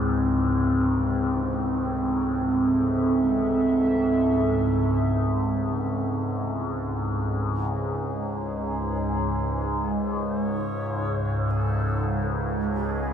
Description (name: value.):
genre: dark ambient drone.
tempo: free time.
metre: none.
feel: none.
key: C# harmonic minor.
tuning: A4 = 437 Hz.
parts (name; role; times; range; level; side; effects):
dark analog pad; sustained chords; 0.0-7.7 s; C4 to E5; -24 LUFS; right 1 dB; lush chorus.
tubular bells; arpeggios; 0.0-13.1 s; C#4 to F#4; -46 LUFS; left 2 dB; none.
overtone-sweeping drone; drone; 0.0-13.1 s; C#2 to G#2; -25 LUFS; equal; chorus, built-in reverb, phaser.
bright reedy shakuhachi; melody; 7.8-13.1 s; G#4 to C#5; -38 LUFS; left 1 dB; tape echo.
room: wet cathedral reverb, RT60 5.9 s.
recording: none.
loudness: -22 LUFS.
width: side -8 dB against mid.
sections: 0.0-7.7 A section; 7.7-13.1 B section.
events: fade-in on shakuhachi 7.7-13.1.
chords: 0.0 Am; 7.7 C#5.